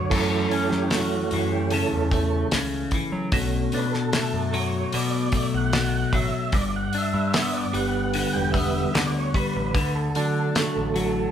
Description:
psychedelic rock; 75 BPM; 4/4; straight; A4 = 440 Hz
tonewheel organ; sustained chords; 0.0-11.3 s; D3 to G5; -27 LUFS; right 4 dB; chorus vibrato, fast rotary speaker
clean electric guitar; riff; 0.0-11.3 s; F#2 to D4; -26 LUFS; left 3 dB; rotary speaker
growling picked electric bass; bass; 0.0-11.3 s; E1 to F#3; -29 LUFS; equal; overdrive
damped 70s drum kit; drums; 0.1-11.1 s; crash cymbal, hi-hat, kick drum, snare drum; -27 LUFS; equal
moderate large studio reverb, RT60 1.3 s; band playing live in one room; -21 LUFS; side -9 dB against mid
0.0-11.3 A section
tonewheel organ solo 0.0-11.3
0.1 F#m7; 3.3 Bm7; 6.5 G; 9.8 D
| 0.11 0.92 1.72 2.52 | 3.32 4.13 4.93 5.73 | 6.54 7.34 8.14 8.95 | 9.75 10.55

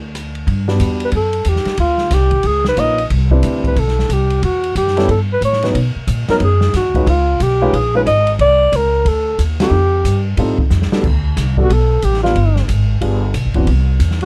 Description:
jazz, small-group swing and bop; 182 BPM; 4/4; swing 63% on 8ths; A4 = 439 Hz
breathy alto saxophone; melody; 0.0-14.2 s; F4 to D#5; -18 LUFS; equal
upright bass; bass; 0.0-14.2 s; F1 to B2; -18 LUFS; equal
open jazz drum kit; drums; 0.1-14.2 s; crash cymbal, hi-hat, kick drum, ride cymbal, rim click, snare drum; -25 LUFS; equal
dark upright piano; accompaniment; 0.7-13.7 s; E3 to B4; -22 LUFS; equal
little or no reverb; dark, warm production; -15 LUFS; mono
0.5-11.0 A section; 11.0-14.2 B section
band accent 9.5; drum fill 10.7-11.0
0.5 Gmaj7; 1.8 Dm7; 2.4 C#13; 3.1 Cmaj9; 4.4 A9; 5.7 Bmaj9; 7.1 C#9; 8.4 Cm9; 9.7 F9; 11.0 Gadd9; 12.3 G7b9; 13.7 C
0.14 | 0.47 0.80 1.13 1.46 | 1.79 2.12 2.44 2.77 | 3.10 3.43 3.76 4.09 | 4.42 4.75 5.08 5.41 | 5.74 6.07 6.40 6.74 | 7.07 7.40 7.73 8.06 | 8.39 8.72 9.05 9.38 | 9.71 10.04 10.37 10.70 | 11.03 11.36 11.69 12.02 | 12.35 12.68 13.01 13.34 | 13.67 13.99

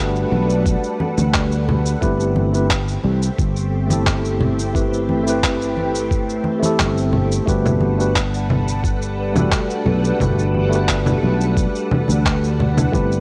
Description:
sunset chillout; 88 BPM; 4/4; straight; G major; A4 = 439 Hz
tine electric piano; accompaniment; 0.0-13.2 s; A3 to B4; -25 LUFS; equal; digital delay
soft string machine; sustained chords; 0.1-13.2 s; G3 to F#5; -28 LUFS; equal; phaser, ensemble chorus
fretless electric bass; bass; 0.0-13.2 s; G1 to D2; -22 LUFS; equal; analog chorus
electronic shaker, handclaps and congas; drums; 0.2-13.2 s; -26 LUFS; equal
congas; percussion; 0.3-12.7 s; -27 LUFS; equal
electronic kick drum; drums; 0.7-13.1 s; -24 LUFS; equal
moderate lush hall reverb, RT60 3.1 s; worn, warbling old tape, cassette tape, warbly pitch drift; -18 LUFS; mono
0.0-13.2 A section
0.0 Gmaj9; 2.0 Am9/G; 7.5 Gmaj9
0.66 1.34 | 2.02 2.70 3.39 4.07 | 4.75 5.43 6.11 6.79 | 7.48 8.16 8.84 9.52 | 10.20 10.89 11.57 12.25 | 12.93

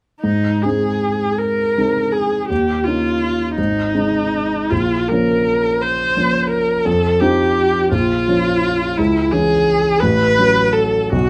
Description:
classical, romantic duo for viola and grand piano; 48-58 BPM (dotted quarters); 6/8; rubato; Ab major; A4 = 441 Hz
rich viola; melody; 0.2-11.3 s; Eb4 to C5; -19 LUFS; equal
warm grand piano; accompaniment; 0.2-11.3 s; Ab1 to Eb4; -21 LUFS; equal
light reverb; close, detailed microphones; -17 LUFS; mono
0.2-11.3 A section
0.2 Ab; 2.5 Eb5; 3.6 Ab; 4.7 Bbm; 6.9 F5; 7.9 Bbm; 9.0 C#m; 10.0 F#m/A
| 0.24 1.40 | 2.50 3.58 | 4.71 5.82 | 6.87 7.93 | 8.99 10.03 | 11.13

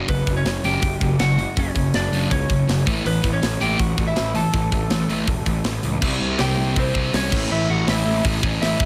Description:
punk rock; 162 BPM; 4/4; straight; A mixolydian; A4 = 438 Hz
sludgy distorted guitar; riff; 0.0-8.9 s; F#2 to C4; -29 LUFS; equal; overdrive
sludgy distorted guitar; riff; 0.0-8.9 s; F#2 to C4; -27 LUFS; equal; overdrive
lightly driven lead guitar; melody; 0.1-8.9 s; B3 to A5; -28 LUFS; equal
fuzz picked electric bass; bass; 0.1-8.9 s; E1 to C#2; -28 LUFS; equal; overdrive
tight metal drum kit; drums; 0.1-8.9 s; crash cymbal, hi-hat, kick drum, snare drum; -26 LUFS; equal
light reverb; -21 LUFS; mono
0.0-6.0 A section; 6.0-8.9 B section
0.0 F#5; 2.9 A5; 6.0 C5; 7.3 A
| 0.09 0.46 0.83 1.20 | 1.57 1.94 2.32 2.69 | 3.06 3.43 3.80 4.17 | 4.55 4.92 5.29 5.66 | 6.03 6.40 6.77 7.14 | 7.51 7.88 8.25 8.61

